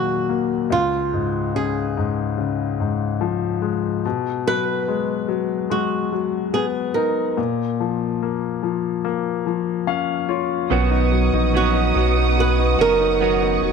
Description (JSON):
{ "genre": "pop", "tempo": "72 BPM", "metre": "4/4", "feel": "straight", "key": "unclear", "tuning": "A4 = 442 Hz", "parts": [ { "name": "flamenco guitar", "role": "melody", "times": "0.0-13.7 s", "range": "F4 to Cb5", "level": "-23 LUFS", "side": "right 5 dB", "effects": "slapback echo" }, { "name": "clear grand piano", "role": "accompaniment", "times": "0.0-13.7 s", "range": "Db2 to F5", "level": "-22 LUFS", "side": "left 9 dB", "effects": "none" }, { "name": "dark studio string section", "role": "sustained chords", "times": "10.7-13.7 s", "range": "B3 to D#6", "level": "-24 LUFS", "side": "right 3 dB", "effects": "none" }, { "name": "direct-recorded clean electric guitar", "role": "arpeggios", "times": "10.7-13.7 s", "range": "B2 to F#4", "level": "-24 LUFS", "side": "right 14 dB", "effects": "spring reverb, slapback echo" }, { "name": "warm sub bass", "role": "bass", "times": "10.7-13.7 s", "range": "F1 to B1", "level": "-20 LUFS", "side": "right 3 dB", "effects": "none" } ], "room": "moderate plate reverb, RT60 2.9 s", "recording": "1960s-style stereo with parts hard left and right", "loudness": "-18 LUFS", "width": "side -5 dB against mid", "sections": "0.0-10.7 A section; 10.7-13.7 B section", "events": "grand piano fill 9.5-10.7", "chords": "0.0 Ebm; 0.7 Db; 4.0 Abm7/Cb; 7.4 Bbm; 10.7 Badd9" }